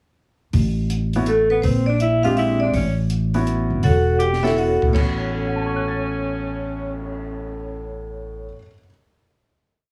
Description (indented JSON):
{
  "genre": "jazz, small-group swing and bop",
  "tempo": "163 BPM",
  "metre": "3/4",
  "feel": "swing 66% on 8ths",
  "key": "A major",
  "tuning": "A4 = 440 Hz",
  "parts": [
    { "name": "upright bass", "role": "bass", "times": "0.5-8.5 s", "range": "E1 to Bb1", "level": "-25 LUFS", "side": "equal", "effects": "none" },
    { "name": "compact cocktail drum kit", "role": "drums", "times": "0.5-7.1 s", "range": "crash cymbal, cymbal swell, hi-hat, kick drum, snare drum", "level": "-29 LUFS", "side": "equal", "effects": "none" },
    { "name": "clear baby grand piano", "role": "accompaniment", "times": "1.2-8.9 s", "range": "A2 to A6", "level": "-28 LUFS", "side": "equal", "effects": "none" },
    { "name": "vibraphone with medium hard mallets", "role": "melody", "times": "1.3-8.5 s", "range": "E4 to G5", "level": "-25 LUFS", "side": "equal", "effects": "plate reverb" },
    { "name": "breathy tenor saxophone", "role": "second line", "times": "1.3-7.9 s", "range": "A3 to G4", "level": "-30 LUFS", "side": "equal", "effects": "none" }
  ],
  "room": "light reverb",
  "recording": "heavily compressed radio sound, multiband compression, small room ambience",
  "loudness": "-20 LUFS",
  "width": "mono",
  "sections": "0.5-4.9 A section; 4.9-7.2 final chord",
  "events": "none",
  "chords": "0.5 N.C.; 1.6 Bb13; 2.7 A6"
}